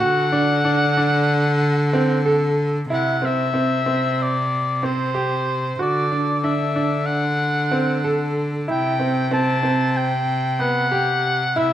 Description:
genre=contemporary instrumental, chamber music in an uneven meter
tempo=187 BPM (eighths)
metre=9/8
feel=straight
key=C lydian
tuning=A4 = 438 Hz
part: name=warm oboe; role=melody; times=0.0-11.7 s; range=C5 to A5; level=-22 LUFS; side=left 2 dB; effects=none
part: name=bright grand piano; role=arpeggios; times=0.0-11.7 s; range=B3 to A4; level=-22 LUFS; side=right 2 dB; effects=none
part: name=bright cello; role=bass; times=0.0-11.7 s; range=C3 to D3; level=-22 LUFS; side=equal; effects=none
room=moderate recital hall reverb, RT60 1.4 s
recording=none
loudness=-18 LUFS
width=side -11 dB against mid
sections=0.0-2.9 A section; 2.9-11.7 B section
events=none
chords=0.0 D; 2.9 C; 5.8 D; 8.7 C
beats=| 0.01 0.33 0.66 0.98 1.30 1.62 1.94 2.26 2.58 | 2.90 3.23 3.55 3.87 4.19 4.51 4.83 5.16 5.48 | 5.80 6.12 6.44 6.76 7.08 7.40 7.72 8.04 8.36 | 8.68 9.00 9.32 9.64 9.96 10.28 10.60 10.92 11.24 | 11.56

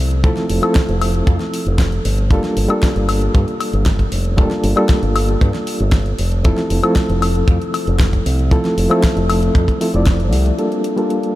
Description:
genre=nu-disco, nu disco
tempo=116 BPM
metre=4/4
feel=straight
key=unclear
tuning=A4 = 440 Hz
part: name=bright reed electric piano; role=accompaniment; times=0.0-11.4 s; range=F3 to D5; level=-19 LUFS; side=equal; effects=fast tremolo, low-pass filter, ping-pong delay
part: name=fingered electric bass with an envelope filter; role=bass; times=0.0-10.5 s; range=F1 to G2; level=-17 LUFS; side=equal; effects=none
part: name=pop drum kit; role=drums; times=0.1-11.3 s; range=hi-hat, snare drum, woodblock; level=-24 LUFS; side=left 2 dB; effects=none
part: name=kick drum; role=drums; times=0.2-10.2 s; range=none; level=-16 LUFS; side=equal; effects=none
room=light reverb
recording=none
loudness=-14 LUFS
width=side -16 dB against mid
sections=0.0-10.6 A section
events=none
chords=0.0 Fmaj7; 2.3 Gm9; 6.2 Fmaj7; 10.6 Gm9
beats=| 0.24 0.76 1.28 1.79 | 2.31 2.83 3.34 3.86 | 4.38 4.90 5.41 5.93 | 6.45 6.96 7.48 8.00 | 8.52 9.03 9.55 10.07 | 10.59 11.10

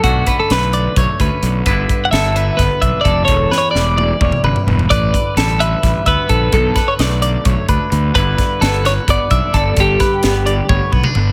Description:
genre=math rock and midwest emo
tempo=259 BPM (eighths)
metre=7/8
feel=straight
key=G lydian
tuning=A4 = 440 Hz
part: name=twelve-string electric guitar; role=melody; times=0.0-10.9 s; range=F#4 to F#5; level=-20 LUFS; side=equal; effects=plate reverb
part: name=twangy electric guitar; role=accompaniment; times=0.0-11.3 s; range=E2 to E4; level=-26 LUFS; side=equal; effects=plate reverb
part: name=twelve-string electric guitar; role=arpeggios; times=0.0-11.3 s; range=A4 to E5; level=-23 LUFS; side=equal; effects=plate reverb, digital delay
part: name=fuzz fingered electric bass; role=bass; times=0.0-11.3 s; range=E1 to D2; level=-20 LUFS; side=equal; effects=overdrive
part: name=crisp fusion drum kit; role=drums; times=0.0-11.3 s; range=hi-hat, kick drum, snare drum, toms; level=-20 LUFS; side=equal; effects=none
room=light reverb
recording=none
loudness=-15 LUFS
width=mono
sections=0.0-11.3 A section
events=drum fill 3.5-4.9, 10.7-11.3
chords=0.0 Bm9; 1.7 G6; 3.3 Em9; 4.9 A9sus4; 6.5 Bm9; 8.2 G6; 9.8 Gadd9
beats=| 0.04 0.27 0.50 0.73 0.96 1.20 1.43 | 1.66 1.89 2.13 2.36 2.59 2.82 3.06 | 3.29 3.52 3.75 3.98 4.22 4.45 4.68 | 4.91 5.14 5.38 5.61 5.84 6.07 6.30 | 6.53 6.76 7.00 7.23 7.46 7.69 7.92 | 8.15 8.38 8.61 8.85 9.08 9.31 9.54 | 9.77 10.00 10.23 10.46 10.70 10.93 11.16

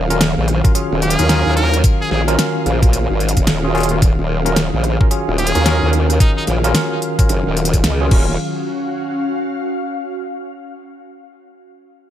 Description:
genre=glitch hop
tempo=110 BPM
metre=4/4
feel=swing 61% on 16ths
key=Eb minor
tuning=A4 = 441 Hz
part: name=warbly tape-like pad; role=sustained chords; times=0.0-8.4 s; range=Eb3 to F5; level=-23 LUFS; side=left 2 dB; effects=chorus, built-in reverb, sidechain pumping
part: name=formant-sweep wobble bass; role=bass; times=0.0-8.4 s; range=Eb1 to Eb2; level=-17 LUFS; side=equal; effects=chorus, overdrive
part: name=ethereal airy pad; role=texture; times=0.0-10.5 s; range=Db4 to F5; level=-27 LUFS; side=equal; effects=ensemble chorus, built-in reverb, sidechain pumping
part: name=tine electric piano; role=stabs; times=0.1-8.3 s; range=Db4 to Bb4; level=-22 LUFS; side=equal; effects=overdrive, fast stereo tremolo, sidechain pumping, ping-pong delay
part: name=pop drum kit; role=drums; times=0.1-8.2 s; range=crash cymbal, hi-hat, rim click, snare drum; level=-20 LUFS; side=equal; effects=studio reverb
part: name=electronic kick drum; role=drums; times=0.6-8.2 s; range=none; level=-14 LUFS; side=equal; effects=studio reverb
part: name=brilliant trumpet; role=melody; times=1.0-6.4 s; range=Eb4 to Bb4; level=-24 LUFS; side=equal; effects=vintage 12-bit sampler grit, ping-pong delay
room=light reverb, digital ambience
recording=bright 1980s-style digital production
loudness=-14 LUFS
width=side -11 dB against mid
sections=0.0-8.4 A section; 8.4-10.6 B section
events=drop 0.0-8.4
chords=0.0 Ebm9; 8.4 Dbadd11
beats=0.21 0.75 1.30 | 1.84 2.39 2.93 3.48 | 4.03 4.57 5.12 5.66 | 6.21 6.75 7.30 7.84 | 8.39 8.93 9.48 10.03

